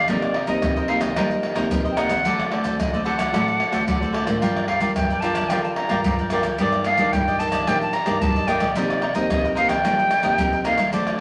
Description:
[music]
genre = samba and choro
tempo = 111 BPM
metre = 4/4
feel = straight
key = unclear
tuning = A4 = 441 Hz
[part]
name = silver concert flute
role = melody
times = 0.0-11.2 s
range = D5 to Bb5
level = -25 LUFS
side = equal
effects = none
[part]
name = cavaquinho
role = accompaniment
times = 0.0-11.2 s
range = D4 to G5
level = -29 LUFS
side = equal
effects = none
[part]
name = nylon-string guitar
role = accompaniment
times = 0.0-11.2 s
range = G2 to Bb4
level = -30 LUFS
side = equal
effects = none
[part]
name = nylon-string guitar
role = bass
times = 0.0-11.2 s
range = G2 to C4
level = -31 LUFS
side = equal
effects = none
[part]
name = maracas, surdo, pandeiro and tamborim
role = percussion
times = 0.1-11.2 s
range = none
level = -27 LUFS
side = equal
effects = none
[sound]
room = wet studio reverb, RT60 0.6 s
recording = none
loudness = -21 LUFS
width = mono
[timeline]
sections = 0.0-11.2 A section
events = none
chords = 0.1 Cm7; 2.3 D7; 4.4 Gm7; 6.6 Ebmaj7/G; 8.8 Cm7

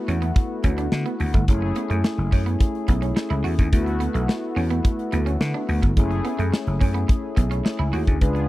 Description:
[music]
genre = early-eighties boogie funk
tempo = 107 BPM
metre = 4/4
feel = straight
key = F# minor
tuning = A4 = 438 Hz
[part]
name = mellow synth brass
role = accompaniment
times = 0.0-8.5 s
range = A3 to G#4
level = -27 LUFS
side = left 2 dB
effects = chorus
[part]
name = electric guitar at the edge of break-up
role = riff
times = 0.1-8.4 s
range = A3 to F#4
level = -30 LUFS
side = right 7 dB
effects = analog chorus
[part]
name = vintage slap bass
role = bass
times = 0.1-8.5 s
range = F#1 to D3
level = -23 LUFS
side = equal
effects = none
[part]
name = modern studio drum kit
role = drums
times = 0.1-8.5 s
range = hi-hat, kick drum, snare drum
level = -19 LUFS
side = equal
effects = none
[sound]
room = little or no reverb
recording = dry, close 1970s-style studio recording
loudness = -20 LUFS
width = side -17 dB against mid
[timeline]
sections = 0.0-8.5 A section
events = none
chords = 0.0 D69; 1.5 F#m9; 3.7 D69; 6.0 F#m9

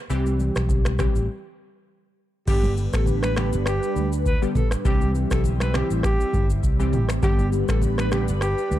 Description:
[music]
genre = afrobeats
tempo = 101 BPM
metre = 4/4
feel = swing 55% on 16ths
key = G major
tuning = A4 = 440 Hz
[part]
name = glassy digital keys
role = accompaniment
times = 0.1-8.4 s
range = D3 to G4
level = -28 LUFS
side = left 2 dB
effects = chorus
[part]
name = fingered electric bass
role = bass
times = 0.1-8.8 s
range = G1 to D2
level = -24 LUFS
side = equal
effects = none
[part]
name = booming analog drum machine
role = drums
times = 0.1-8.8 s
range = crash cymbal, finger snaps, kick drum, rim click, shaker, toms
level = -24 LUFS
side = equal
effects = none
[part]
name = congas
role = percussion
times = 0.3-8.8 s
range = none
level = -33 LUFS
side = right 2 dB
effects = none
[part]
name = breathy alto saxophone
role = melody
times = 2.5-8.8 s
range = G4 to B4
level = -29 LUFS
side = equal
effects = ping-pong delay
[part]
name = airy breathy pad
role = sustained chords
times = 2.8-8.8 s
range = G3 to B4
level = -30 LUFS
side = right 2 dB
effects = chorus, phaser, sidechain pumping
[sound]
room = digital ambience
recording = dark, warm production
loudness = -20 LUFS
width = side -13 dB against mid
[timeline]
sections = 0.0-2.5 A section; 2.5-8.8 B section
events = break 1.3-2.5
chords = 0.1 C; 2.5 G; 4.9 C; 7.2 G

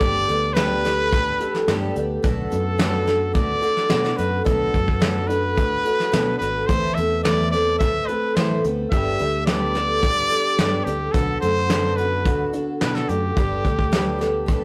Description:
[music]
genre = indie folk with a building arrangement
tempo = 108 BPM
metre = 4/4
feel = straight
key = G major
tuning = A4 = 439 Hz
[part]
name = clear trumpet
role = melody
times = 0.0-14.6 s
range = G4 to E5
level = -26 LUFS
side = equal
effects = none
[part]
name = picked twelve-string acoustic guitar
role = accompaniment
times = 0.0-14.6 s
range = A2 to B4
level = -26 LUFS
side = equal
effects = none
[part]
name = dark upright piano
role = arpeggios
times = 0.0-14.6 s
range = D3 to A4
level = -33 LUFS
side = equal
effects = none
[part]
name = fingered electric bass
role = bass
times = 0.0-14.5 s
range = G1 to B2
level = -29 LUFS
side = equal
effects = none
[part]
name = soft brush drum kit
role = drums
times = 0.0-14.6 s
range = hi-hat, kick drum, snare drum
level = -26 LUFS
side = equal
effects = none
[sound]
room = light reverb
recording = rough rehearsal-room recording, warm saturation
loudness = -21 LUFS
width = mono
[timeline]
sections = 0.0-14.6 A section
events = none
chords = 0.0 Gadd9; 2.2 Bm7; 6.7 Amadd9; 8.9 Gadd9; 11.1 Bm7; 13.4 Gadd9

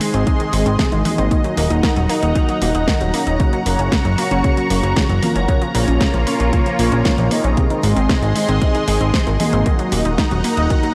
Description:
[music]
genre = italo disco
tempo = 115 BPM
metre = 4/4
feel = straight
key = Eb dorian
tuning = A4 = 441 Hz
[part]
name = lush unison pad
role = sustained chords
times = 0.0-10.9 s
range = Ab3 to Db6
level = -24 LUFS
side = equal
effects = chorus, phaser
[part]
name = unison pluck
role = arpeggios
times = 0.0-10.9 s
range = C3 to Eb4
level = -26 LUFS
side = equal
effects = analog delay
[part]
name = mellow synth brass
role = stabs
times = 0.0-10.9 s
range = Bb3 to Eb5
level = -26 LUFS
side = equal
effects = chorus, analog delay
[part]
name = house drum kit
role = drums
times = 0.0-10.9 s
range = congas, hi-hat, snare drum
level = -25 LUFS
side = equal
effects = none
[part]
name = fat analog bass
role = bass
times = 0.1-10.7 s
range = Eb1 to Bb1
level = -21 LUFS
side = equal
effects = none
[part]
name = electronic kick drum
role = drums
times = 0.3-10.8 s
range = none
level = -21 LUFS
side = equal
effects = none
[sound]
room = little or no reverb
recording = dry, gritty hardware recording, vinyl crackle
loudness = -17 LUFS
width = mono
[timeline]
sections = 0.0-10.9 A section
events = none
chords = 0.0 Ab; 1.3 Ebm; 3.4 Gb; 5.5 Bbm; 7.6 Ab; 9.7 Ebm

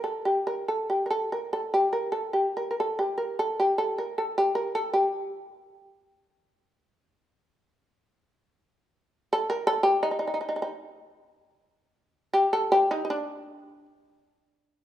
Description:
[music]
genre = japanese traditional, Japanese chamber music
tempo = 70-81 BPM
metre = 2/4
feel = rubato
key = G hirajoshi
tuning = A4 = 441 Hz
[part]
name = shamisen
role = solo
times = 0.0-13.9 s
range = D4 to Bb4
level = -24 LUFS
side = equal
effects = none
[sound]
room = moderate recital hall reverb, RT60 1.7 s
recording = minimal, uncompressed stereo recording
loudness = -24 LUFS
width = side -12 dB against mid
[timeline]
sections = 0.0-8.1 A section; 8.1-14.8 B section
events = none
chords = none

